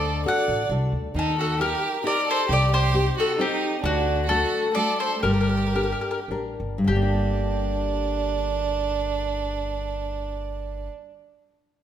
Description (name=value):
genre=italian folk, Italian serenade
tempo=96-135 BPM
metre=3/4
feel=straight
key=G harmonic minor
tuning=A4 = 440 Hz
part: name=mandolin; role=melody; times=0.0-10.9 s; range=F#4 to F#5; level=-26 LUFS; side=left 3 dB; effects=none
part: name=clear violin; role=second line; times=0.0-10.9 s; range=D4 to D5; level=-27 LUFS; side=right 6 dB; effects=none
part: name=nylon-string guitar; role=accompaniment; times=0.0-11.0 s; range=G2 to Bb4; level=-28 LUFS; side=left 2 dB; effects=none
part: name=upright bass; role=bass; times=0.0-10.9 s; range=G1 to Eb2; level=-27 LUFS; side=equal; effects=none
room=wet recital hall reverb, RT60 1.5 s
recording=none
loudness=-22 LUFS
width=side -10 dB against mid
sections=0.0-6.9 A section; 6.9-10.6 B section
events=slowing down 3.8-6.9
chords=0.0 D; 1.2 Eb; 2.5 Cm; 3.8 D; 5.2 Gm